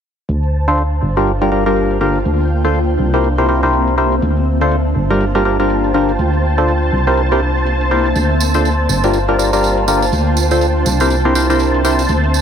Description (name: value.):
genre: piano house.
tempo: 122 BPM.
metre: 4/4.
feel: swing 59% on 16ths.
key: D minor.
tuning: A4 = 438 Hz.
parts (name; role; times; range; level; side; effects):
analog string pad; sustained chords; 0.3-12.4 s; C5 to A5; -22 LUFS; right 1 dB; ensemble chorus.
solid FM bass; bass; 0.3-12.4 s; G1 to D2; -17 LUFS; equal; none.
electronic hi-hat and cabasa; drums; 0.3-12.3 s; none; -45 LUFS; left 3 dB; none.
granular cloud pad; texture; 0.9-12.4 s; Bb3 to G5; -21 LUFS; left 1 dB; built-in reverb.
percussive organ stab; riff; 0.7-12.0 s; C3 to C5; -16 LUFS; left 1 dB; chorus, phaser, tape echo.
tambourine; percussion; 8.2-12.4 s; none; -24 LUFS; right 10 dB; none.
room: light reverb, digital ambience.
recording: none.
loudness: -12 LUFS.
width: side -8 dB against mid.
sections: 0.3-12.4 A section.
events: filter sweep on analog synth pad 0.3-12.4.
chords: 0.3 Dm7; 1.0 Gm7; 2.3 Dm7; 3.0 C7; 4.2 Dm7; 5.0 Gm7; 6.2 Dm7; 6.9 C7; 8.2 Dm7; 8.9 Gm7; 10.1 Dm7; 10.9 C7.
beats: | 0.29 0.78 1.27 1.76 | 2.26 2.75 3.24 3.73 | 4.22 4.71 5.21 5.70 | 6.19 6.68 7.17 7.67 | 8.16 8.65 9.14 9.63 | 10.12 10.62 11.11 11.60 | 12.09.